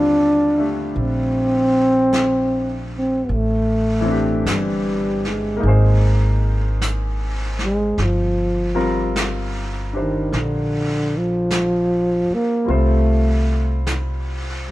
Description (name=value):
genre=jazz ballad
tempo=51 BPM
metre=4/4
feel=swing 67% on 8ths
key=unclear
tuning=A4 = 441 Hz
part: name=breathy trombone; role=melody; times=0.0-14.7 s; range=D3 to D4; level=-19 LUFS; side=equal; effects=none
part: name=clear concert grand piano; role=accompaniment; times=0.0-14.7 s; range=D3 to C5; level=-26 LUFS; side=left 2 dB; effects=none
part: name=upright bass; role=bass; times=0.0-14.7 s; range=G1 to Eb2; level=-21 LUFS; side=equal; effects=none
part: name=vintage brush drum kit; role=drums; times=1.0-14.7 s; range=brushed snare drum, hi-hat, snare drum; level=-30 LUFS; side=equal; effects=none
room=little or no reverb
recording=none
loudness=-17 LUFS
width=side -17 dB against mid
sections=0.0-14.7 A section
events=none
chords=0.0 Ebmaj13; 3.3 Am7; 5.6 Ab; 8.0 Gm7; 12.7 C5